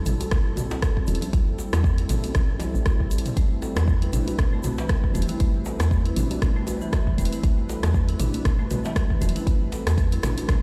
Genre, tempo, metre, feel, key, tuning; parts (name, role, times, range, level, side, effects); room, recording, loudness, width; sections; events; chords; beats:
afro house; 118 BPM; 4/4; swing 57% on 16ths; A minor; A4 = 440 Hz
warm analog pad; sustained chords; 0.0-10.6 s; G3 to B4; -36 LUFS; equal; chorus, sidechain pumping
woody FM bass; bass; 0.1-10.6 s; E1 to E2; -27 LUFS; equal; sidechain pumping
deep house drum kit; drums; 0.1-10.6 s; hi-hat, rim click, toms; -34 LUFS; equal
congas; percussion; 0.1-10.6 s; -39 LUFS; equal
egg shaker; percussion; 0.1-10.6 s; -46 LUFS; equal
djembe; percussion; 0.2-10.5 s; -36 LUFS; equal
electronic kick drum; drums; 0.3-10.6 s; -25 LUFS; equal
marimba with medium mallets; arpeggios; 3.4-10.6 s; E3 to A4; -33 LUFS; equal; sidechain pumping, dub echo
little or no reverb; played on a big sound system in a bare room, stone room reverb; -23 LUFS; mono
0.0-10.6 A section
0.0 Am7
0.32 0.82 | 1.33 1.84 2.35 2.86 | 3.37 3.88 4.38 4.89 | 5.40 5.91 6.42 6.93 | 7.43 7.94 8.45 8.96 | 9.47 9.98 10.49